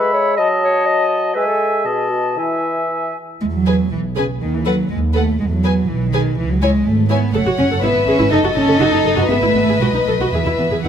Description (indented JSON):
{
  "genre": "quick classical-period movement for symphony orchestra",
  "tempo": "122 BPM",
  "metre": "2/4",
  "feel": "rubato",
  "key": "E major",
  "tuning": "A4 = 440 Hz",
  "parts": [
    { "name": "mellow clarinet", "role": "second line", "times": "0.0-2.9 s", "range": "E4 to D#5", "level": "-20 LUFS", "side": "left 3 dB", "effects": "none" },
    { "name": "silver concert flute", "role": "second line", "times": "0.0-3.2 s", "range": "G#5 to B5", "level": "-22 LUFS", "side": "left 3 dB", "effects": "none" },
    { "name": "warm oboe", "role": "second line", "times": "0.0-3.1 s", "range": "D#5 to E5", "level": "-21 LUFS", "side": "right 1 dB", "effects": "none" },
    { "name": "mellow bassoon", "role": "accompaniment", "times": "0.0-3.2 s", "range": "B2 to G#3", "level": "-22 LUFS", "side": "right 1 dB", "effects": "none" },
    { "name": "dark chamber double bass section", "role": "bass", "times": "3.4-10.9 s", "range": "F#1 to E2", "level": "-20 LUFS", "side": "right 2 dB", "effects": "none" },
    { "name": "warm chamber cello section", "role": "bass", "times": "3.4-10.8 s", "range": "C#3 to D#4", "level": "-18 LUFS", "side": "right 2 dB", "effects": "none" },
    { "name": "warm chamber violin section", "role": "melody", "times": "3.7-10.9 s", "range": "D#5 to G#5", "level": "-24 LUFS", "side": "left 3 dB", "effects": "none" },
    { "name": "warm chamber violin section", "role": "second line", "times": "3.7-10.9 s", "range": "A4 to C#5", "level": "-21 LUFS", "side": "left 4 dB", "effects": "none" },
    { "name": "warm chamber viola section", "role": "accompaniment", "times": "3.7-10.9 s", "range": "B3 to A4", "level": "-23 LUFS", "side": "right 1 dB", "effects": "none" }
  ],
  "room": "moderate concert hall reverb, RT60 2.5 s",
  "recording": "none",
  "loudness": "-14 LUFS",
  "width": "side -8 dB against mid",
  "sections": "0.0-3.4 A section; 3.4-10.9 A section",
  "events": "none",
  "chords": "0.4 D#dim/F#; 1.4 E/G#; 1.9 B7; 2.4 E; 4.4 B7/D# (rootless); 5.4 E; 6.4 C#m; 7.3 F#5; 7.8 E/G#; 8.3 D#dim/F#; 9.3 E/G#; 9.8 B; 10.3 E5"
}